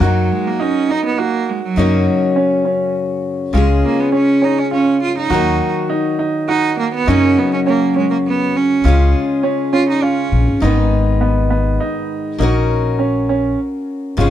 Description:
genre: acoustic folk duo or small band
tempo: 102 BPM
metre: 3/4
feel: straight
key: unclear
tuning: A4 = 440 Hz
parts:
  - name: bright cello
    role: second line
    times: 0.0-10.6 s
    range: Gb3 to F4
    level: -18 LUFS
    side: right 5 dB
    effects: none
  - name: picked steel-string acoustic guitar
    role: accompaniment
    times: 0.0-14.3 s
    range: Gb2 to Cb5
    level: -18 LUFS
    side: left 4 dB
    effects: none
  - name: clear upright piano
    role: arpeggios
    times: 0.0-14.3 s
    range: Cb4 to Gb4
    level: -20 LUFS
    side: right 5 dB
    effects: none
  - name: upright bass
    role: bass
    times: 0.0-14.3 s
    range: Ab1 to Gb2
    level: -16 LUFS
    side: left 1 dB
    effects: none
room: small room ambience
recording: dry, close 1970s-style studio recording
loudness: -13 LUFS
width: side -11 dB against mid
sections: 0.0-10.6 A section; 10.6-14.3 B section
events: cello solo 0.0-10.6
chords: 0.0 Ebm/Gb; 1.8 Gb; 3.5 Db; 5.3 Ebm; 7.1 Gb; 8.8 Db; 10.6 Abm; 12.4 Gb/Bb

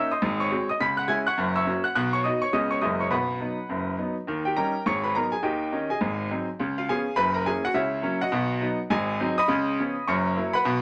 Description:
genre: jazz, stride piano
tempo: 207 BPM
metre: 4/4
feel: swing 62% on 8ths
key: B major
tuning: A4 = 440 Hz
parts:
  - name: bright baby grand piano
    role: solo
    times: 0.0-10.8 s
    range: F#1 to B6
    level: -26 LUFS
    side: equal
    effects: none
room: wet studio ambience, RT60 0.5 s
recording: none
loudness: -26 LUFS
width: mono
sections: 0.0-4.3 A section; 4.3-10.8 B section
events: none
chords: 0.2 G#7; 0.8 C#m7; 1.4 F#7; 2.0 B; 2.5 C#7; 2.8 F#9; 3.1 B; 4.3 D#7; 4.9 G#m7; 5.4 D#7; 6.0 G#7; 6.6 C#7; 7.2 F#7; 7.8 F#7/C#; 8.3 B; 8.9 G#7; 9.5 C#7; 10.1 F#7

